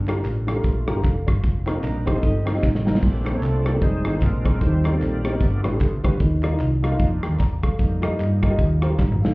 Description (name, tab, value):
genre	uptempo gospel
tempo	151 BPM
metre	4/4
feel	swing 60% on 8ths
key	unclear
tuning	A4 = 440 Hz
part	warm upright piano	accompaniment	0.0-9.3 s	G2 to Bb5	-26 LUFS	left 1 dB	none
part	hollow-body short-scale fingered electric bass	bass	0.0-9.3 s	F1 to G2	-22 LUFS	equal	none
part	modern studio drum kit	drums	0.1-9.3 s	crash cymbal, hi-hat, kick drum, rim click, snare drum, toms	-23 LUFS	equal	none
part	handclaps and tambourine	percussion	0.1-9.3 s	none	-45 LUFS	right 2 dB	none
part	bright tonewheel organ	sustained chords	0.5-8.8 s	G3 to D5	-30 LUFS	right 1 dB	fast rotary speaker, overdrive, chorus vibrato
part	clean electric guitar	second line	1.8-2.8 s	D4 to Eb5	-32 LUFS	right 2 dB	none
room	studio ambience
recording	heard muffled through a wall, club reverb, EQ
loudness	-18 LUFS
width	side -24 dB against mid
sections	0.0-9.3 A section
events	tonewheel organ solo 0.0-9.3; drum fill 2.6-3.0, 9.0-9.3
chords	0.0 Gm7; 1.4 F7sus4; 3.0 Bbmaj9; 3.8 Fm7; 4.2 Bb9; 4.6 Eb6; 5.4 G7; 6.2 Cm11; 7.8 F9sus4